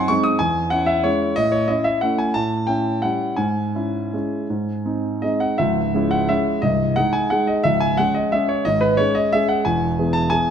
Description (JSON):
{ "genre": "classical, piano waltz", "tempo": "153-200 BPM", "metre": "3/4", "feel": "rubato", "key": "C# minor", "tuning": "A4 = 445 Hz", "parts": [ { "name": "warm concert grand piano", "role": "solo", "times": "0.0-10.5 s", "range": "B#0 to D#6", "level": "-18 LUFS", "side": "equal", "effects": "none" } ], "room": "moderate recital hall reverb, RT60 1.4 s", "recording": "none", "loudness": "-18 LUFS", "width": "side -8 dB against mid", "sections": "0.0-5.6 A section; 5.6-10.5 B section", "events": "none", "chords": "0.4 C#m/E; 1.4 A; 2.4 A7; 3.4 C#m/G#; 4.5 G#; 5.6 C#m; 6.6 G#/B#; 7.7 C#5; 9.7 E", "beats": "0.09 | 0.40 0.71 1.04 | 1.37 1.69 2.02 | 2.35 2.68 3.03 | 3.38 3.75 4.14 | 4.50 4.86 5.23 | 5.59 5.94 6.29 | 6.63 6.96 7.31 | 7.65 7.98 8.32 | 8.66 8.98 9.33 | 9.65 9.98 10.31" }